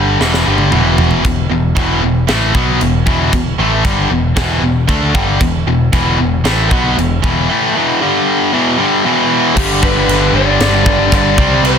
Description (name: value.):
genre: heavy metal.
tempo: 115 BPM.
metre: 4/4.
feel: straight.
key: E minor.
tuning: A4 = 439 Hz.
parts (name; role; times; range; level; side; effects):
distorted electric guitar; riff; 0.0-11.8 s; E2 to D4; -16 LUFS; right 12 dB; overdrive.
tight distorted guitar; riff; 0.0-11.8 s; E2 to D4; -15 LUFS; left 12 dB; distortion.
growling picked electric bass; bass; 0.0-11.8 s; E1 to D2; -17 LUFS; equal; overdrive.
tight metal drum kit; drums; 0.2-11.8 s; china cymbal, crash cymbal, kick drum, snare drum, toms; -17 LUFS; equal; none.
smooth overdriven lead guitar; melody; 9.6-11.8 s; G4 to D5; -16 LUFS; left 1 dB; none.
distorted electric guitar; riff; 9.6-11.8 s; G2 to C4; -21 LUFS; left 1 dB; none.
room: small room ambience.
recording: dense, heavily limited modern master.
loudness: -10 LUFS.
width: side -7 dB against mid.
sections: 0.0-9.6 A section; 9.6-11.8 B section.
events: drum fill 0.2-1.2.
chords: 0.2 Em; 8.0 G5; 8.5 Em; 9.6 G.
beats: 0.20 0.72 | 1.24 1.76 2.29 2.81 | 3.33 3.85 4.37 4.89 | 5.41 5.93 6.45 6.97 | 7.49 8.00 8.52 9.04 | 9.56 10.08 10.60 11.12 | 11.63.